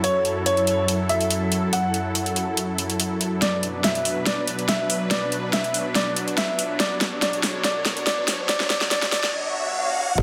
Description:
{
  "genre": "heavy wobble dubstep",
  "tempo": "142 BPM",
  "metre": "4/4",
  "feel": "half-time",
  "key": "unclear",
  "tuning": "A4 = 439 Hz",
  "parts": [
    { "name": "clear baby grand piano", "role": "melody", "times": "0.0-9.3 s", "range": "C#5 to F#5", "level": "-28 LUFS", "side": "equal", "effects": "dub echo" },
    { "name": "supersaw pad", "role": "sustained chords", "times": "0.0-10.2 s", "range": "F#2 to C#5", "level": "-29 LUFS", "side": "equal", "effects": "sidechain pumping, low-pass filter" },
    { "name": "dubstep drum kit", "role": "drums", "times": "0.0-10.2 s", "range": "crash cymbal, hi-hat, snare drum", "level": "-26 LUFS", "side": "equal", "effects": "studio reverb" },
    { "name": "riser, swell and impact", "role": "sound effects", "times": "6.5-10.2 s", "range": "none", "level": "-32 LUFS", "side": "equal", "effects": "none" },
    { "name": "growl bass", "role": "bass", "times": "10.2 s", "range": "F#1", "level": "-23 LUFS", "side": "equal", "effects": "chorus, overdrive" },
    { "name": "electronic kick drum", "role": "drums", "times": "10.2 s", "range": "none", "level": "-23 LUFS", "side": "equal", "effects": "soft clipping on kick, studio reverb" }
  ],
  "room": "wet plate reverb, RT60 1.5 s, digital ambience",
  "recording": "dense, heavily limited modern master, high-pass filter",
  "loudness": "-23 LUFS",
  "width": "mono",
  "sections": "0.0-10.2 A section",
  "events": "build-up 0.0-10.2; filter sweep 0.0-10.2; drum fill 3.4-9.3; riser 6.5-10.2; swell 9.3-10.2",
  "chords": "0.0 F#m7; 3.4 Bm",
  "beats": "| 0.04 0.46 0.88 1.31 | 1.73 2.15 2.57 3.00 | 3.42 3.84 4.26 4.69 | 5.11 5.53 5.95 6.38 | 6.80 7.22 7.64 8.07 | 8.49 8.91 9.33 9.76 | 10.18"
}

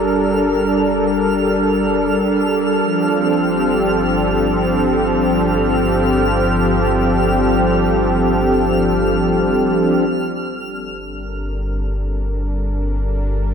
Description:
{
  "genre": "ambient",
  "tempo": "free time",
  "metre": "none",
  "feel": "none",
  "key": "G minor",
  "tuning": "A4 = 436 Hz",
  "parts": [
    { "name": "warm analog pad", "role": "sustained chords", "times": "0.0-13.5 s", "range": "F3 to Bb4", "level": "-16 LUFS", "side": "equal", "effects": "chorus" },
    { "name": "deep rumbling drone", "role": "bass", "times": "0.0-13.5 s", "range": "G1", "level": "-24 LUFS", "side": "equal", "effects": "built-in reverb" },
    { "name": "bowed-like drone", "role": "drone", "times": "0.0-13.5 s", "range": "G3 to D4", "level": "-24 LUFS", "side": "left 1 dB", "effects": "built-in reverb" },
    { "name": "twinkling granular texture", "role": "texture", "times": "0.0-10.1 s", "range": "F6", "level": "-26 LUFS", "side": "equal", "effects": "built-in reverb" }
  ],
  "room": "wet lush hall reverb, RT60 2.7 s",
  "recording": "dreamy mix soaked in reverb",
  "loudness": "-14 LUFS",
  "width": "side -7 dB against mid",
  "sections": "0.0-10.1 A section; 10.1-13.5 B section",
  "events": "fade-in on synth drone 0.0-10.1, 10.1-13.5; fade-in on synth texture 0.0-10.1; fade-in on analog synth pad 10.1-13.5",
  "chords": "0.0 Gm9; 2.8 F/G; 10.1 Gmadd9",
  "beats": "free time"
}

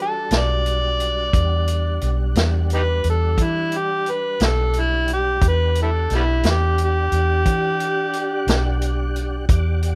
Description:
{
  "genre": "slow blues",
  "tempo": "59 BPM (dotted quarters)",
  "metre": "12/8",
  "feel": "straight",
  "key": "E minor",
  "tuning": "A4 = 438 Hz",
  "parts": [
    { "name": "overdriven harmonica", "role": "melody", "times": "0.0-8.8 s", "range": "G3 to D5", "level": "-24 LUFS", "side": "equal", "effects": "none" },
    { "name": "tonewheel organ", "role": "sustained chords", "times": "0.0-9.9 s", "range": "G3 to F#5", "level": "-33 LUFS", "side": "equal", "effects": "slow rotary speaker, chorus vibrato" },
    { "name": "vintage muted fingered electric bass", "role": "bass", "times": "0.0-9.9 s", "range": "B1 to E3", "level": "-23 LUFS", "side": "equal", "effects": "none" },
    { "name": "vintage drum kit", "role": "drums", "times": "0.3-9.9 s", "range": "hi-hat, kick drum, snare drum", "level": "-24 LUFS", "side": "equal", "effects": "none" }
  ],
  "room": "light reverb",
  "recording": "rough home demo mix",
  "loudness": "-20 LUFS",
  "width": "mono",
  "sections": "0.0-9.9 A section",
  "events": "harmonica solo 0.0-9.9",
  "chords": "0.0 Em9",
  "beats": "0.31 | 1.33 2.36 3.38 4.40 | 5.42 6.44 7.46 8.47 | 9.49"
}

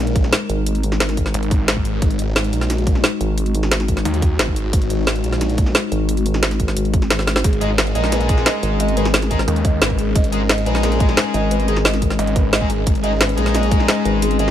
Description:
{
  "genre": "dark technical drum and bass",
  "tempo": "177 BPM",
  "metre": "4/4",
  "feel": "straight",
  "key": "unclear",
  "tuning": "A4 = 440 Hz",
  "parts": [
    { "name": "dark analog pad", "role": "sustained chords", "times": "0.0-14.5 s", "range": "G#3 to A#4", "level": "-23 LUFS", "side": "left 4 dB", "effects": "chorus, sidechain pumping" },
    { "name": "snarling distorted saw bass", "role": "bass", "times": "0.0-13.9 s", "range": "G#1 to D#2", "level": "-20 LUFS", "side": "equal", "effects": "distortion, sidechain pumping" },
    { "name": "drum and bass drum kit", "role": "drums", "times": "0.1-14.5 s", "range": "hi-hat, snare drum", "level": "-20 LUFS", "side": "equal", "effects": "overdrive" },
    { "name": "electronic kick drum", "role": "drums", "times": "0.2-13.8 s", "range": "none", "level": "-18 LUFS", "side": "equal", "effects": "none" },
    { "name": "vowel-sweep wobble bass", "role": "bass", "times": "0.5-14.5 s", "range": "G#1", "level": "-20 LUFS", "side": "equal", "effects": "chorus" },
    { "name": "felt-muted upright piano", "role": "arpeggios", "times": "7.4-14.5 s", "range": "G#4 to D#5", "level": "-25 LUFS", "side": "right 3 dB", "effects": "sidechain pumping, ping-pong delay" },
    { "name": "distorted electric guitar", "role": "stabs", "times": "7.6-14.5 s", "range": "G#3 to G#4", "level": "-24 LUFS", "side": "left 3 dB", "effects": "distortion, ping-pong delay" }
  ],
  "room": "light reverb",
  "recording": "none",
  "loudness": "-15 LUFS",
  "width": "side -11 dB against mid",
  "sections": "0.0-14.5 A section",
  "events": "kick drops out 7.1-7.4; drum fill 7.2",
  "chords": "0.0 G#sus2",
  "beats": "0.33 | 0.66 1.00 1.34 1.68 | 2.02 2.36 2.70 3.04 | 3.38 3.71 4.05 4.39 | 4.73 5.07 5.41 5.75 | 6.09 6.43 6.77 7.11 | 7.44 7.78 8.12 8.46 | 8.80 9.14 9.48 9.82 | 10.15 10.49 10.83 11.17 | 11.51 11.85 12.19 12.53 | 12.87 13.21 13.54 13.88 | 14.22"
}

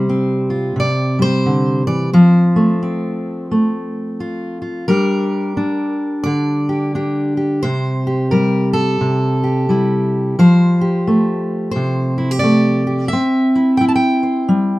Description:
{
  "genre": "folk, solo fingerstyle acoustic guitar",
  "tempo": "88 BPM",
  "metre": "4/4",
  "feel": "swing 61% on 8ths",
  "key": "F major",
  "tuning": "A4 = 440 Hz",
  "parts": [
    { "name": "fingerpicked steel-string acoustic guitar", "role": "solo", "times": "0.0-14.8 s", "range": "C3 to A5", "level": "-14 LUFS", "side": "equal", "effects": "none" }
  ],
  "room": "moderate studio ambience, RT60 0.5 s",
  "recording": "rough home demo mix",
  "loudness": "-14 LUFS",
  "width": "side -19 dB against mid",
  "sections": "0.0-4.9 A section; 4.9-14.8 B section",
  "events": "none",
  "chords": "0.0 Csus4; 0.8 Cadd9; 2.1 F; 4.9 Gm; 7.6 C; 10.4 Fadd9; 13.1 C",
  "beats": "0.08 0.77 1.46 | 2.14 2.83 3.52 4.20 | 4.89 5.58 6.26 6.95 | 7.63 8.32 9.00 9.69 | 10.37 11.06 11.74 12.43 | 13.12 13.80 14.49"
}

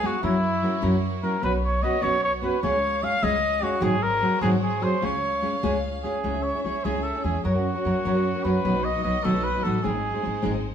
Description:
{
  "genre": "mexican folk, mariachi",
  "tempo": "100 BPM (dotted quarters)",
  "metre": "6/8",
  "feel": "straight",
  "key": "Db major, C# minor from 6.2 s",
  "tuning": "A4 = 442 Hz",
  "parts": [
    { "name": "mellow trumpet", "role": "melody", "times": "0.0-10.6 s", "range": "Fb4 to F5", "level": "-26 LUFS", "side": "equal", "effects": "none" },
    { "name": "nylon-string guitar", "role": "accompaniment", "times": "0.0-10.7 s", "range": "Ab2 to Cb5", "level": "-26 LUFS", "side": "equal", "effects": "none" },
    { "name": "clear chamber violin section", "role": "sustained chords", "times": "0.0-10.7 s", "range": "Ab3 to F5", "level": "-37 LUFS", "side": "equal", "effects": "none" },
    { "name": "upright bass", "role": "bass", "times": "0.0-10.7 s", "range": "Ab1 to Gb2", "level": "-29 LUFS", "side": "equal", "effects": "none" }
  ],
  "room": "wet studio reverb, RT60 1.0 s",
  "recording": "band playing live in one room",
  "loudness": "-22 LUFS",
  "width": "side -8 dB against mid",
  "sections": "0.0-6.2 A section; 6.2-10.7 B section",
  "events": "none",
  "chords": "0.2 Gb7; 1.4 Cbsus2; 2.6 Db; 3.8 Ab7; 5.0 Db; 6.2 C#m; 7.4 F#; 8.6 B; 9.8 G#",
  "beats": "| 0.23 0.83 | 1.43 2.03 | 2.63 3.23 | 3.83 4.42 | 5.03 5.63 | 6.24 6.84 | 7.45 8.04 | 8.64 9.24 | 9.85 10.45"
}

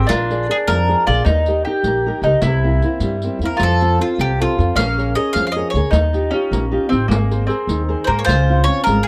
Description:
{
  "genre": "italian folk, Italian serenade",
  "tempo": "102 BPM (dotted quarters)",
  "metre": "6/8",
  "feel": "straight",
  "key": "Ab major",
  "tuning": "A4 = 440 Hz",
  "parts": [
    { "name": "bowl-back mandolin", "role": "melody", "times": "0.0-1.2, 3.5-5.9, 8.0-9.1 s", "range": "F4 to F5", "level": "-22 LUFS", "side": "equal", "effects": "none" },
    { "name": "mandolin", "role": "second line", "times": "0.0-9.1 s", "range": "Bb3 to G4", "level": "-24 LUFS", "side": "equal", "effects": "none" },
    { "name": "flamenco guitar", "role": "accompaniment", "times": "0.0-9.1 s", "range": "C3 to D5", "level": "-24 LUFS", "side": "equal", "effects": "none" },
    { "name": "upright bass", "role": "bass", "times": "0.0-9.0 s", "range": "Ab1 to Ab2", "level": "-21 LUFS", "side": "equal", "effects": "none" },
    { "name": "riq", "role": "percussion", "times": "0.1-9.1 s", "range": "none", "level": "-27 LUFS", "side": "equal", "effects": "none" }
  ],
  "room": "light reverb",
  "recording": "close, detailed microphones",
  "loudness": "-17 LUFS",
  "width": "mono",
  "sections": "0.0-8.3 A section",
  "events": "none",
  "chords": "0.1 Bb7; 1.3 Eb; 2.4 C7; 3.6 F; 4.8 Bbm7; 5.9 Ebadd9; 7.1 Abadd9; 8.3 Dbmaj7",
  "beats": "| 0.09 0.67 | 1.26 1.84 | 2.42 3.01 | 3.60 4.19 | 4.77 5.35 | 5.93 6.51 | 7.10 7.69 | 8.28 8.87"
}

